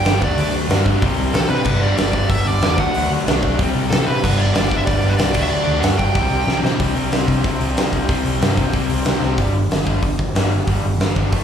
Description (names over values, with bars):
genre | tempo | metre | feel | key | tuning
punk rock | 186 BPM | 4/4 | straight | G major | A4 = 440 Hz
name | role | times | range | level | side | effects
smooth overdriven lead guitar | melody | 0.0-6.6 s | A4 to G5 | -23 LUFS | right 1 dB | none
cranked stack guitar | riff | 0.0-11.4 s | G2 to D4 | -27 LUFS | right 12 dB | overdrive, slapback echo
distorted electric guitar | riff | 0.0-9.4 s | G2 to D4 | -26 LUFS | left 1 dB | distortion, slapback echo
overdriven semi-hollow guitar | riff | 0.0-11.4 s | G2 to E4 | -25 LUFS | left 12 dB | slapback echo
overdriven picked electric bass | bass | 0.1-11.4 s | G1 to C3 | -20 LUFS | equal | none
big rock drum kit | drums | 0.1-11.4 s | crash cymbal, hi-hat, kick drum, snare drum | -20 LUFS | equal | none
room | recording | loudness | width
little or no reverb | live gig heard through the venue's PA, club reverb | -15 LUFS | side -8 dB against mid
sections
0.0-6.8 A section; 6.8-9.4 B section; 9.4-11.4 C section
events
drum fill 6.5-6.8, 9.2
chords
0.2 D; 1.0 C; 1.7 G; 2.8 D; 3.6 C; 4.2 G; 5.4 D; 6.2 C; 9.4 G5